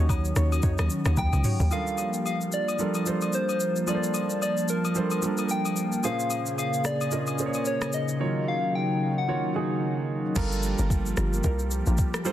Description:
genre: amapiano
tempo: 111 BPM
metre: 4/4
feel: swing 58% on 16ths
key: G minor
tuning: A4 = 440 Hz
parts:
  - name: warm analog pad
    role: sustained chords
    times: 0.0-12.3 s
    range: Db3 to A5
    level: -30 LUFS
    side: left 2 dB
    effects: chorus, sidechain pumping
  - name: deep mellow chord stab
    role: stabs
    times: 0.0-1.6, 10.4-12.3 s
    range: Eb4 to Db5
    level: -36 LUFS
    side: right 1 dB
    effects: chorus, tape echo
  - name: hollow log drum bass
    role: bass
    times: 0.0-1.7, 10.4-12.0 s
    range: G1 to F2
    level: -25 LUFS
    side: equal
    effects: none
  - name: smooth R&B drum kit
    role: drums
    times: 0.1-12.3 s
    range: crash cymbal, hi-hat, kick drum, rim click, shaker, toms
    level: -30 LUFS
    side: equal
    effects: soft clipping on snare
  - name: agogo bells and woodblock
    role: percussion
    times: 0.1-7.9 s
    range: none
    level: -37 LUFS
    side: left 7 dB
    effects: none
  - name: soft struck synth lead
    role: melody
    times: 1.2-9.9 s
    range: Bb4 to G5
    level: -30 LUFS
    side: left 2 dB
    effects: chorus, tape echo
  - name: warm grand piano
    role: accompaniment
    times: 1.7-12.3 s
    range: Bb2 to Eb5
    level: -30 LUFS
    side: right 5 dB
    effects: none
room: little or no reverb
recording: dense, heavily limited modern master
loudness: -24 LUFS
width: side -12 dB against mid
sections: 0.0-1.7 A section; 1.7-10.4 B section; 10.4-12.3 C section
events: drop 0.0-1.7; drum fill 1.2-1.7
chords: 0.0 Ebm7; 1.7 Gm7; 6.0 Bbm7; 8.2 Ebm7; 10.4 Gm7

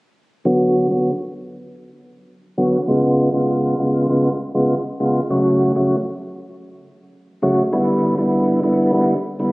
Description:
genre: dancehall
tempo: 99 BPM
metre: 4/4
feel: straight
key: B minor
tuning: A4 = 440 Hz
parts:
  - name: tonewheel organ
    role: accompaniment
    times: 0.5-9.5 s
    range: C#3 to F#4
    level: -16 LUFS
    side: equal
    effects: overdrive, chorus vibrato, slow rotary speaker, low-pass filter
room: moderate plate reverb, RT60 2.9 s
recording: recorded on a phone in the room, studio reverb, compression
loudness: -16 LUFS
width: side -22 dB against mid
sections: 0.5-9.5 A section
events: filter sweep on tonewheel organ 0.5-9.5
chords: 0.5 Bm; 2.9 C#7; 5.3 F#m; 7.7 Em7

